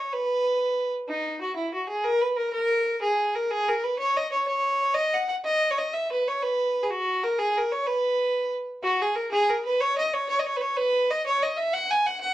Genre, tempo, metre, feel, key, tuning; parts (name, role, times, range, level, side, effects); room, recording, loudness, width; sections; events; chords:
celtic folk; 124 BPM (dotted quarters); 6/8; straight; B major; A4 = 440 Hz
rich fiddle; solo; 0.0-12.3 s; D#4 to G#5; -23 LUFS; equal
moderate studio reverb, RT60 0.6 s; worn, warbling old tape, cassette tape, warbly pitch drift; -23 LUFS; side -14 dB against mid
0.0-1.1 A section; 1.1-8.8 B section; 8.8-12.3 B section